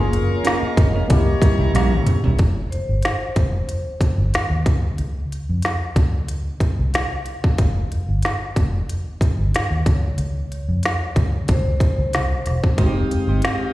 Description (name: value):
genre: lush 1970s-style soul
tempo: 92 BPM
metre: 4/4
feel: swing 54% on 16ths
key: unclear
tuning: A4 = 445 Hz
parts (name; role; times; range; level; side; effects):
- tine electric piano; accompaniment; 0.0-2.4, 12.8-13.7 s; Ab3 to Ab4; -24 LUFS; left 2 dB; lush chorus, slapback echo
- bright tonewheel organ; sustained chords; 0.0-2.4, 12.8-13.7 s; Ab3 to Eb6; -30 LUFS; equal; slow rotary speaker
- semi-hollow electric guitar; riff; 0.0-2.4, 12.8-13.7 s; G3 to C5; -26 LUFS; right 6 dB; slapback echo
- vintage muted fingered electric bass; bass; 0.0-13.4 s; E1 to F2; -20 LUFS; equal; none
- vibraphone with medium hard mallets; texture; 0.0-12.9 s; Bb4 to F5; -31 LUFS; equal; none
- organic electronic drum kit; drums; 0.1-13.6 s; hi-hat, kick drum, snare drum, toms; -19 LUFS; equal; none
room: digital ambience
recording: live gig heard through the venue's PA, recital hall reverb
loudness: -17 LUFS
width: side -16 dB against mid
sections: 0.0-2.4 A section; 2.4-13.7 B section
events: drum fill 1.7-2.4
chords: 0.0 Gbmaj7; 1.1 C7b9; 2.4 F5; 4.7 Dbmaj7; 7.6 Fsus2; 9.9 Dbmaj7(no3); 12.8 Fm9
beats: 0.45 1.10 1.75 | 2.39 3.04 3.69 4.34 | 4.99 5.64 6.29 6.94 | 7.59 8.24 8.89 9.54 | 10.19 10.84 11.48 12.13 | 12.78 13.43